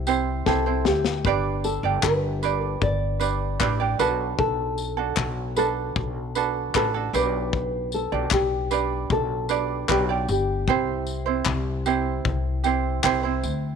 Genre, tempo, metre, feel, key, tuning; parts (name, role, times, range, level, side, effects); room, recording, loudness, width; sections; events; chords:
acoustic pop; 76 BPM; 4/4; straight; G major; A4 = 439 Hz
nylon-string guitar; melody; 0.0-12.6 s; G4 to D5; -27 LUFS; left 2 dB
ukulele; accompaniment; 0.0-13.8 s; C4 to D5; -26 LUFS; right 10 dB
upright bass; bass; 0.0-13.8 s; G1 to D2; -28 LUFS; left 2 dB
modern studio drum kit; drums; 0.1-13.6 s; handclaps, kick drum, snare drum, tambourine; -28 LUFS; left 7 dB
light reverb; 1960s-style stereo with parts hard left and right, faint mains hum; -22 LUFS; side -6 dB against mid
0.0-13.8 A section
drum fill 0.5-1.2
0.0 C; 1.2 G; 4.0 Bm7; 7.1 G/B; 10.7 C